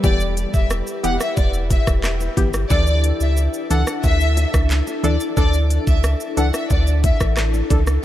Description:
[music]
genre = dancehall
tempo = 90 BPM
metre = 4/4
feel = straight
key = unclear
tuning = A4 = 440 Hz
[part]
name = warm studio violin section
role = melody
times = 0.0-7.2 s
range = D5 to F#5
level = -25 LUFS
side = left 1 dB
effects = analog delay
[part]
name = punchy chord stab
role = accompaniment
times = 0.0-7.8 s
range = E3 to A4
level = -26 LUFS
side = equal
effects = chorus
[part]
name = glassy FM pad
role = sustained chords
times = 0.0-8.0 s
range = D4 to B4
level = -27 LUFS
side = left 3 dB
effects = ensemble chorus, built-in reverb, sidechain pumping
[part]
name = warm sub bass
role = bass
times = 0.0-8.0 s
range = E1 to D2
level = -19 LUFS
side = equal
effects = none
[part]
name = afro-pop drum kit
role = drums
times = 0.0-8.0 s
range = handclaps, hi-hat, kick drum, rim click, shaker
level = -20 LUFS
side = equal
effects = none
[part]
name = bongos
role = percussion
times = 0.0-7.9 s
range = none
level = -36 LUFS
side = left 7 dB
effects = none
[sound]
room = light reverb, digital ambience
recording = none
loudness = -16 LUFS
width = side -13 dB against mid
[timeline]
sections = 0.0-8.0 A section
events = none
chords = 0.0 Em; 2.7 Dsus2

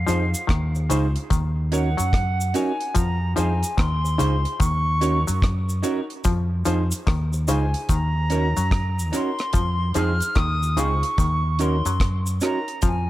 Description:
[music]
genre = roots reggae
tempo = 73 BPM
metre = 4/4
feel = swing 64% on 16ths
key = Eb dorian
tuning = A4 = 440 Hz
[part]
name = silver concert flute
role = melody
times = 0.0-13.1 s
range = F5 to F6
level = -27 LUFS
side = equal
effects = dub echo
[part]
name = fingered electric bass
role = bass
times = 0.0-13.1 s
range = Db2 to Gb2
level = -23 LUFS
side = equal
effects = none
[part]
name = semi-hollow electric guitar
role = accompaniment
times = 0.1-12.6 s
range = Db4 to C5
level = -29 LUFS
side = right 6 dB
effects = dub echo
[part]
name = muted clav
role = riff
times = 0.1-13.1 s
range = Db3 to Gb3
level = -31 LUFS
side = left 6 dB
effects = overdrive
[part]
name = clear upright piano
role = stabs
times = 0.1-12.6 s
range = C4 to Db5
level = -32 LUFS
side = left 3 dB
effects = none
[part]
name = deep reggae drum kit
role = drums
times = 0.1-13.1 s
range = hi-hat, kick drum, rim click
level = -23 LUFS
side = equal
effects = none
[part]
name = cabasa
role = percussion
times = 0.1-13.1 s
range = none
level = -33 LUFS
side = right 1 dB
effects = none
[sound]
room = light reverb, small room ambience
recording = none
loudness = -20 LUFS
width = side -15 dB against mid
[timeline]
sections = 0.0-13.1 A section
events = none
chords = 0.0 Fm7; 1.3 Ebm7; 3.0 Fm7; 4.6 Ebm7; 6.2 Fm7; 7.9 Ebm7; 9.5 Fm7; 11.2 Ebm7

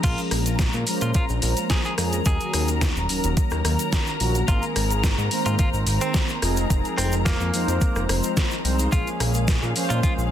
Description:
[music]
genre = nu-disco, nu disco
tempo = 108 BPM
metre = 4/4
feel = straight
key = Bb minor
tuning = A4 = 440 Hz
[part]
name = direct-recorded clean electric guitar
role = melody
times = 0.0-10.1 s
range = Bb3 to Ab4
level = -31 LUFS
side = equal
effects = vintage 12-bit sampler grit, dub echo
[part]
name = mellow synth brass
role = accompaniment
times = 0.0-10.3 s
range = Eb3 to C5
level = -27 LUFS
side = equal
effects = chorus, sidechain pumping
[part]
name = muted studio string section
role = sustained chords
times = 0.0-10.3 s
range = Ab4 to Bb5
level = -31 LUFS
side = left 2 dB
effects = sidechain pumping
[part]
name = fat analog bass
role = bass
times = 0.0-10.3 s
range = Eb1 to Bb2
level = -24 LUFS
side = equal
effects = sidechain pumping
[part]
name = electronic kick drum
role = drums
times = 0.0-10.2 s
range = none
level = -22 LUFS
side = equal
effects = overdrive
[part]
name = pop drum kit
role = drums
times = 0.0-10.3 s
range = crash cymbal, hi-hat, rim click, shaker, snare drum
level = -28 LUFS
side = left 1 dB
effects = overdrive
[part]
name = egg shaker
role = percussion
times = 0.0-10.3 s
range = none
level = -38 LUFS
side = equal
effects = none
[sound]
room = little or no reverb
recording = dense, heavily limited modern master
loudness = -20 LUFS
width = side -10 dB against mid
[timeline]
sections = 0.0-10.3 A section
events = none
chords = 0.0 Bbm7; 2.3 Ebm7; 4.5 Abadd9; 6.4 Fm7; 8.9 Bbm7

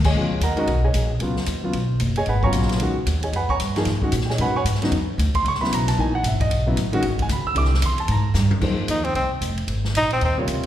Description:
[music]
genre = modal jazz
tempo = 226 BPM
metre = 4/4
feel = swing 60% on 8ths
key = unclear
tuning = A4 = 440 Hz
[part]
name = upright bass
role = bass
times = 0.0-10.7 s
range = F1 to A#2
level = -22 LUFS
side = equal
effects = none
[part]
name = open jazz drum kit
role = drums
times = 0.0-10.7 s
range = crash cymbal, hi-hat, kick drum, ride cymbal, snare drum, toms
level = -27 LUFS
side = left 2 dB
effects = none
[part]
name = warm concert grand piano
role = accompaniment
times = 0.1-10.7 s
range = B2 to E6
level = -23 LUFS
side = equal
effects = none
[part]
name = warm tenor saxophone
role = melody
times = 8.9-10.4 s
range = C4 to Eb4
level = -22 LUFS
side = equal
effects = none
[sound]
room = wet scoring stage reverb, RT60 1.6 s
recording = recorded in a church or concert hall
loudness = -19 LUFS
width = side -12 dB against mid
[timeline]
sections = 0.1-8.6 A section; 8.6-10.7 A section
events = drum fill 8.4; tenor saxophone solo 8.6-10.7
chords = 0.1 C#13sus4; 4.4 F#13sus4; 7.6 C7b13; 8.6 Fm11

